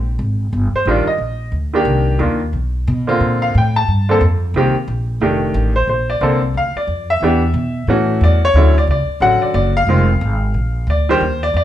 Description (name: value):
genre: jazz piano trio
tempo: 180 BPM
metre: 4/4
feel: swing 62% on 8ths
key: unclear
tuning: A4 = 440 Hz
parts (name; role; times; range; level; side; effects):
- upright bass; bass; 0.0-11.6 s; F1 to B2; -16 LUFS; equal; none
- clear baby grand piano; melody; 0.8-11.6 s; D3 to A5; -16 LUFS; equal; none
room: moderate large studio reverb, RT60 0.9 s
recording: band playing live in one room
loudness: -14 LUFS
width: side -12 dB against mid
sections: 0.0-5.9 A section; 5.9-11.6 B section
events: grand piano solo 0.0-5.9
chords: 0.0 Absus2; 0.5 Ebmaj7; 1.9 Cm11; 2.5 Bm; 3.2 Bbmaj9; 4.5 Cm7; 5.2 F13; 5.9 Bbadd9; 7.2 Em7; 7.9 A; 8.6 Dmaj7; 9.9 Fm7; 10.6 Bb6